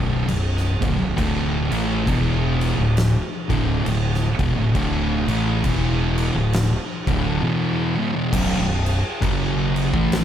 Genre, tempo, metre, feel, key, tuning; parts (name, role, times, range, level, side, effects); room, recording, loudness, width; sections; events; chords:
stoner and doom metal; 67 BPM; 4/4; swing 60% on 8ths; A4 = 440 Hz
thick fuzz guitar; riff; 0.0-10.2 s; B1 to A3; -23 LUFS; left 6 dB; distortion
thick fuzz guitar; riff; 0.0-10.2 s; B1 to A3; -23 LUFS; right 6 dB; distortion
fuzz fingered electric bass; bass; 0.0-10.2 s; B0 to A1; -26 LUFS; equal; overdrive
oversized low-tuned drum kit; drums; 0.3-10.2 s; crash cymbal, kick drum, snare drum; -25 LUFS; equal
light reverb; -18 LUFS; side -10 dB against mid
0.0-8.3 A section; 8.3-10.2 B section
0.0 B5; 1.2 D5; 8.3 B5